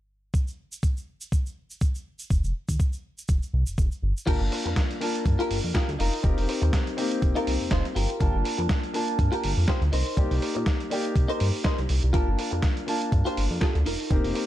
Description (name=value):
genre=nu-disco, nu disco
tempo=122 BPM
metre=4/4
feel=swing 55% on 16ths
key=G minor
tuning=A4 = 437 Hz
part: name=electronic kick drum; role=drums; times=0.3-14.2 s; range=none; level=-24 LUFS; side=equal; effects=studio reverb
part: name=tube shaker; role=percussion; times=0.3-4.3 s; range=none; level=-41 LUFS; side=right 2 dB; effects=none
part: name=chorused synth bass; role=bass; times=2.3-14.3 s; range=F1 to Bb2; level=-25 LUFS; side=equal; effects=none
part: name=dark baby grand piano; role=accompaniment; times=4.3-14.5 s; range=Bb3 to A5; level=-30 LUFS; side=left 1 dB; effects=sidechain pumping, tape echo
part: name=direct-recorded clean electric guitar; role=riff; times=4.3-14.4 s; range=Eb4 to C5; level=-31 LUFS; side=left 1 dB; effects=lush chorus, tape echo
part: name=dusty soul sampler-style drum kit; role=drums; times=4.3-14.5 s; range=crash cymbal, hi-hat, snare drum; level=-33 LUFS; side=right 1 dB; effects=low-pass filter on hats, studio reverb, low-pass filter on cymbals, low-pass filter on snare
room=digital ambience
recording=dark, warm production, faint mains hum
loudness=-23 LUFS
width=side -13 dB against mid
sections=0.3-4.3 A section; 4.3-14.5 B section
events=none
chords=0.3 N.C.; 2.1 F5; 4.0 N.C.; 4.3 Gm7; 6.0 F7sus4; 8.0 Gm7; 9.9 Cm7; 12.1 Gm7; 13.9 F7sus4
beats=| 0.34 0.83 1.32 1.81 | 2.31 2.80 3.29 3.78 | 4.27 4.77 5.26 5.75 | 6.24 6.73 7.22 7.72 | 8.21 8.70 9.19 9.68 | 10.18 10.67 11.16 11.65 | 12.14 12.63 13.13 13.62 | 14.11